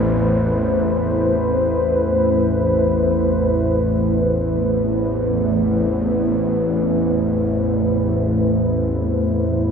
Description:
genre	dark ambient drone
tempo	free time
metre	none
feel	none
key	A minor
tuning	A4 = 440 Hz
part	deep dark ambient pad	sustained chords	0.0-9.7 s	A3 to C5	-18 LUFS	equal	chorus, built-in reverb
part	bowed-like drone	drone	0.0-9.7 s	A1 to E2	-21 LUFS	equal	built-in reverb
room	wet cathedral reverb, RT60 5.6 s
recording	dreamy mix soaked in reverb, cassette tape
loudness	-16 LUFS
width	side -6 dB against mid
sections	0.0-3.9 A section; 3.9-9.7 B section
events	none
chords	0.0 Am

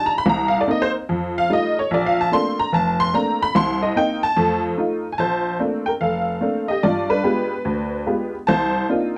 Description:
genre	solo jazz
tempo	146 BPM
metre	4/4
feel	swing 66% on 8ths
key	Bb major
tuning	A4 = 440 Hz
part	honky-tonk upright piano	solo	0.0-9.2 s	F1 to C6	-20 LUFS	equal	none
room	light reverb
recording	dark, warm production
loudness	-20 LUFS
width	mono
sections	0.0-5.2 A section; 5.2-9.2 B section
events	honky-tonk piano solo 0.0-5.2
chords	0.2 Cm7; 1.1 F9; 1.9 Bbmaj9; 3.5 Cm7; 4.4 F7; 5.2 Bbmaj9; 6.8 G7b9; 8.5 Cm11

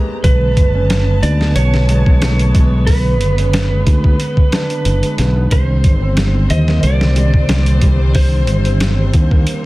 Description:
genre	trip hop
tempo	91 BPM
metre	4/4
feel	swing 53% on 16ths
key	unclear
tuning	A4 = 444 Hz
part	mellow tine electric piano	accompaniment	0.0-9.7 s	D3 to C5	-21 LUFS	right 1 dB	slow stereo tremolo
part	warm studio string section	sustained chords	0.0-9.7 s	C3 to A#5	-28 LUFS	left 2 dB	none
part	felt-muted upright piano	arpeggios	0.0-9.7 s	G#2 to D4	-25 LUFS	equal	tape echo
part	electric slide guitar	melody	0.2-9.7 s	B4 to Eb5	-23 LUFS	right 3 dB	dub echo
part	modern bright fingered electric bass	bass	0.2-9.4 s	F#1 to Eb2	-14 LUFS	equal	none
part	boom bap sampler-style drum kit	drums	0.2-9.6 s	hi-hat, kick drum, snare drum	-14 LUFS	equal	studio reverb
room	little or no reverb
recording	dense, heavily limited modern master, vinyl crackle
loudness	-11 LUFS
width	side -19 dB against mid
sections	0.0-9.7 A section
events	none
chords	0.2 Bm7; 5.5 Cmadd9

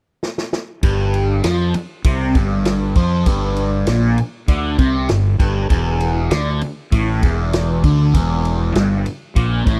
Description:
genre	classic rock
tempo	98 BPM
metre	4/4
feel	straight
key	unclear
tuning	A4 = 440 Hz
part	vintage drum kit	drums	0.2-9.8 s	kick drum, ride cymbal, snare drum	-20 LUFS	equal	none
part	overdriven electric guitar	riff	0.8-9.8 s	E2 to F3	-20 LUFS	equal	phaser
part	fuzz fingered electric bass	bass	0.8-9.8 s	E1 to F2	-22 LUFS	equal	overdrive
room	small room ambience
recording	dry, close 1970s-style studio recording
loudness	-18 LUFS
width	mono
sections	0.8-9.8 A section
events	drum fill 0.2-0.8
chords	0.0 N.C.; 5.7 Em7b5

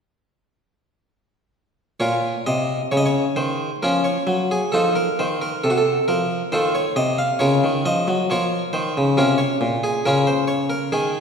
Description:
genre	classical, baroque-style suite movement for harpsichord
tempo	67 BPM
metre	3/4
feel	rubato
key	Bb minor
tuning	A4 = 440 Hz
part	harpsichord	solo	2.0-11.2 s	Bb2 to F5	-18 LUFS	equal	none
room	wet scoring stage reverb, RT60 1.6 s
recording	minimal, uncompressed stereo recording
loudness	-18 LUFS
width	side -6 dB against mid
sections	2.0-11.2 A section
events	none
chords	2.0 Bbm; 4.7 F7; 7.4 Bbm/Db; 10.0 Dbmaj13

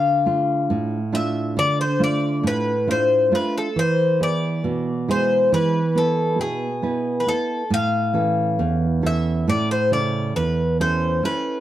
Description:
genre	greek folk, Greek bouzouki band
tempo	137 BPM (eighths)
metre	9/8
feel	straight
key	D dorian sharp4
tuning	A4 = 435 Hz
part	Greek bouzouki	melody	0.0-11.6 s	G#4 to F5	-22 LUFS	left 3 dB	none
part	nylon-string guitar	accompaniment	0.0-11.6 s	E2 to B4	-21 LUFS	right 2 dB	none
room	moderate studio reverb, RT60 0.6 s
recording	dark, warm production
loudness	-18 LUFS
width	side -12 dB against mid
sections	0.0-11.6 A section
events	none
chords	0.0 Dm; 3.8 E; 7.7 A

